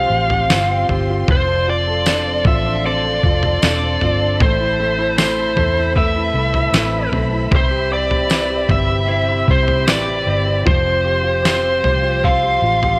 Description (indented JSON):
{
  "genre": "pop ballad",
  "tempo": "77 BPM",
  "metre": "4/4",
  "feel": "straight",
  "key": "A minor",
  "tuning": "A4 = 441 Hz",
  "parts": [
    { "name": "lead guitar through a small cranked amp", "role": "melody", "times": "0.0-13.0 s", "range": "C5 to F5", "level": "-20 LUFS", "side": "equal", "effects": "overdrive" },
    { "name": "warm baby grand piano", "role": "accompaniment", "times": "0.0-13.0 s", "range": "F3 to A4", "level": "-28 LUFS", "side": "equal", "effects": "none" },
    { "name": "dark studio string section", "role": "sustained chords", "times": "0.0-13.0 s", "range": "C4 to C6", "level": "-30 LUFS", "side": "equal", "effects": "none" },
    { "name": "direct-recorded clean electric guitar", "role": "arpeggios", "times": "0.0-13.0 s", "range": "A2 to C5", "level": "-30 LUFS", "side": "equal", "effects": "spring reverb" },
    { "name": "vintage muted fingered electric bass", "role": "bass", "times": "0.0-13.0 s", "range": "E1 to E2", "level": "-24 LUFS", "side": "equal", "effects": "none" },
    { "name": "lo-fi sampler-style drum kit", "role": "drums", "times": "0.3-13.0 s", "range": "kick drum, snare drum, toms", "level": "-21 LUFS", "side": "equal", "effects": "none" },
    { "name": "tambourine", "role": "percussion", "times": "0.5-11.6 s", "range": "none", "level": "-33 LUFS", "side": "equal", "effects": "none" }
  ],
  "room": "light reverb",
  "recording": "none",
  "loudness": "-17 LUFS",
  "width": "mono",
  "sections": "0.0-13.0 A section",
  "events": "none",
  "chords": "0.0 Fsus2; 1.3 Dm7/F; 4.4 Amadd9; 7.5 Cmaj7; 10.7 Fsus2",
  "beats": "0.50 | 1.28 2.06 2.85 3.63 | 4.41 5.18 5.95 6.73 | 7.51 8.30 9.08 9.88 | 10.66 11.45 12.23"
}